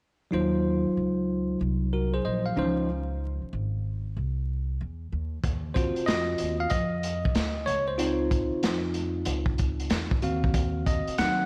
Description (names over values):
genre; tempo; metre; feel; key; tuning
hip hop, jazz-hop; 94 BPM; 4/4; swing 66% on 16ths; Eb dorian; A4 = 441 Hz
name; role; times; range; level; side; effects
bell-like tine electric piano; accompaniment; 0.3-11.5 s; Fb3 to Gb5; -30 LUFS; equal; none
upright bass; bass; 0.3-11.5 s; Ab1 to F2; -33 LUFS; equal; none
crunchy breakbeat drum kit; drums; 5.4-11.4 s; hi-hat, kick drum, snare drum; -31 LUFS; equal; none
room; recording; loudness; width
moderate lush hall reverb, RT60 2.0 s; dreamy mix soaked in reverb, vinyl crackle; -28 LUFS; mono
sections
0.3-5.4 A section; 5.4-11.5 B section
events
break 2.9-5.4; tine electric piano solo 5.4-11.5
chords
0.3 Ebm69; 2.6 Dbmaj9; 5.1 N.C.; 5.4 Ebm69; 7.7 Dbmaj9; 10.2 Ebm69